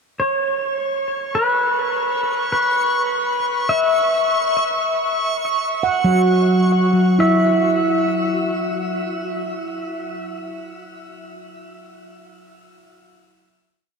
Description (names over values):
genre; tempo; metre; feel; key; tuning
ambient; 51 BPM; 3/4; straight; unclear; A4 = 435 Hz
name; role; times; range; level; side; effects
pedal steel guitar; melody; 0.2-10.3 s; B4 to E5; -20 LUFS; left 1 dB; ping-pong delay
backwards swelling texture; texture; 1.3-7.2 s; C#6; -25 LUFS; right 1 dB; built-in reverb
handpan; arpeggios; 5.8-10.2 s; F#3 to F#5; -18 LUFS; right 1 dB; ping-pong delay
room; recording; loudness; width
wet shimmer reverb, RT60 7.6 s; none; -16 LUFS; side -5 dB against mid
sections
0.2-7.2 A section; 7.2-10.7 final note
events
none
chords
0.2 N.C.; 3.7 F#5; 7.2 N.C.